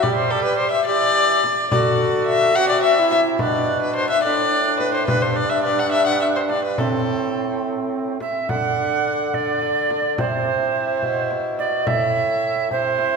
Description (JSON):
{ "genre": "classical, renaissance-style consort dance", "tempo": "71 BPM (dotted quarters)", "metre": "6/8", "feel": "straight", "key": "unclear", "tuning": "A4 = 444 Hz", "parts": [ { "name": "warm violin", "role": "melody", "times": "0.0-13.2 s", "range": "D4 to F#5", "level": "-21 LUFS", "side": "left 4 dB", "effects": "none" }, { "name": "bright tenor recorder", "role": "second line", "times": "0.0-13.2 s", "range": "C4 to F#5", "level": "-22 LUFS", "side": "right 3 dB", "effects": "none" }, { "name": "warm bassoon", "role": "bass", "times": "0.0-13.2 s", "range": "G2 to G3", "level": "-24 LUFS", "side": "right 2 dB", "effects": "none" }, { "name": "frame drum", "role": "percussion", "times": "0.0-13.2 s", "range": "none", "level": "-28 LUFS", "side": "left 2 dB", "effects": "none" } ], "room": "wet concert hall reverb, RT60 2.0 s", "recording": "recorded in a church or concert hall", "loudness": "-17 LUFS", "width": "side -5 dB against mid", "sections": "0.0-8.5 A section; 8.5-13.2 B section", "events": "none", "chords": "0.0 G5; 1.7 D; 3.4 Bm; 5.1 G5; 6.8 Am; 8.5 D; 10.2 C; 11.9 Am" }